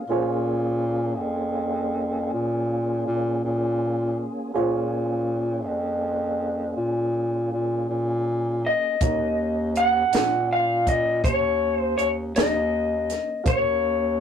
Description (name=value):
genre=slow blues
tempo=54 BPM (dotted quarters)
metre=12/8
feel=straight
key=Bb minor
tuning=A4 = 442 Hz
part: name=dark upright piano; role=accompaniment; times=0.0-14.2 s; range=Eb4 to F5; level=-29 LUFS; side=right 3 dB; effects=none
part: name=mellow tonewheel organ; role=sustained chords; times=0.0-14.2 s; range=Bb3 to Ab4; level=-31 LUFS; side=equal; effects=slow rotary speaker, chorus vibrato
part: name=breathy bass clarinet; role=bass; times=0.1-14.2 s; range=Eb2 to Bb2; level=-26 LUFS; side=equal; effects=none
part: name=electric guitar through a small old amp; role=melody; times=8.7-14.2 s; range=Db5 to Gb5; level=-22 LUFS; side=left 1 dB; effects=none
part: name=compact cocktail drum kit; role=drums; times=9.0-13.6 s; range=hi-hat, kick drum, snare drum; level=-24 LUFS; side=equal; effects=none
room=light reverb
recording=rough rehearsal-room recording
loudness=-22 LUFS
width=side -8 dB against mid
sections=0.0-14.2 A section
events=none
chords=0.0 Bbm7; 9.0 Ebm7